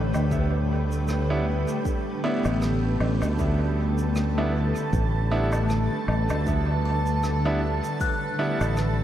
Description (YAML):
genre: ambient dub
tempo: 78 BPM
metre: 4/4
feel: swing 57% on 16ths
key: A mixolydian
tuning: A4 = 440 Hz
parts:
  - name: granular cloud pad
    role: sustained chords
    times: 0.0-9.0 s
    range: D3 to A5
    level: -28 LUFS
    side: equal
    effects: built-in reverb
  - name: buzzing kalimba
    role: arpeggios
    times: 0.0-9.0 s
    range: B3 to F#6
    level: -35 LUFS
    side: left 1 dB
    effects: dub echo
  - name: fingered electric bass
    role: bass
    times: 0.0-9.0 s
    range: A1 to D2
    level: -24 LUFS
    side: equal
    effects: none
  - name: drifting glass-harmonics texture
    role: texture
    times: 0.0-9.0 s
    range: G3 to A4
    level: -36 LUFS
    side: right 1 dB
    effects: chorus, built-in reverb
  - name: shaker, woodblock and rim click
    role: drums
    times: 0.1-8.9 s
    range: none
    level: -38 LUFS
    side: equal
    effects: dub echo
  - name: electronic kick drum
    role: drums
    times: 0.3-8.2 s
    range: none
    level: -28 LUFS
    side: equal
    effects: none
  - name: bright upright piano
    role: stabs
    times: 1.3-8.6 s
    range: G3 to E4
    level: -32 LUFS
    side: right 2 dB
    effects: dub echo
room: moderate lush hall reverb, RT60 2.6 s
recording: dreamy mix soaked in reverb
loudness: -22 LUFS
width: side -11 dB against mid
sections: 0.0-9.0 A section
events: none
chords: 0.0 A9sus4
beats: 0.31 1.08 | 1.85 2.62 3.39 4.16 | 4.93 5.70 6.47 7.24 | 8.01 8.78